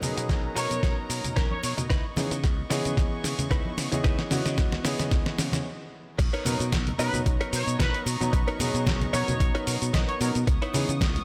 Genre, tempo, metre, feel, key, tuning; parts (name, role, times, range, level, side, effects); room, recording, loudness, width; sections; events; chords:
nu-disco, nu disco; 112 BPM; 4/4; swing 55% on 16ths; B major; A4 = 439 Hz
bright baby grand piano; accompaniment; 0.0-10.9 s; E3 to A#5; -35 LUFS; equal; tape echo
dark chamber string section; sustained chords; 0.0-11.2 s; B3 to D#6; -40 LUFS; equal; sidechain pumping
direct-recorded clean electric guitar; riff; 0.0-11.0 s; C#4 to D#5; -36 LUFS; equal; analog chorus, low-pass filter, tape echo
modern bright fingered electric bass; bass; 0.0-11.2 s; B1 to C#3; -33 LUFS; equal
dusty soul sampler-style drum kit; drums; 0.0-11.2 s; cabasa, crash cymbal, hi-hat, snare drum; -34 LUFS; equal; studio reverb
congas and cabasa; percussion; 0.0-11.2 s; -38 LUFS; equal
electronic kick drum; drums; 0.3-11.1 s; -28 LUFS; equal; studio reverb
clear trumpet section; melody; 0.6-1.7, 7.0-10.3 s; B4 to C#5; -37 LUFS; equal; dub echo
light reverb, small room ambience; -26 LUFS; mono
0.0-6.2 A section; 6.2-11.2 B section
build-up 0.0-6.2; drum fill 0.0-5.7; stop 5.7-6.2; drop 6.2-11.2
0.0 Bmaj9; 1.9 C#m9; 6.2 Bmaj9; 10.5 C#m9